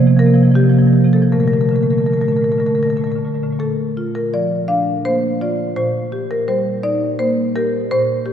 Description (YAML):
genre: classical, contemporary piece for solo marimba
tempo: 77-86 BPM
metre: 3/4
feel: rubato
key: Bb major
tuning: A4 = 439 Hz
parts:
  - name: marimba with medium hard mallets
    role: solo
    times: 0.0-8.3 s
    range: Bb2 to F5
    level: -14 LUFS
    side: equal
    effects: none
room: wet cathedral reverb, RT60 4.7 s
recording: heard from further back in the room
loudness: -14 LUFS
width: side -9 dB against mid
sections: 0.0-3.6 A section; 3.6-8.3 B section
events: none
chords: 0.0 C7sus4; 1.3 Bbmaj7; 3.6 Bb; 5.8 Bb69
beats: 0.55 | 1.31 2.09 2.84 | 3.60 4.33 5.05 | 5.77 6.49 7.21 | 7.91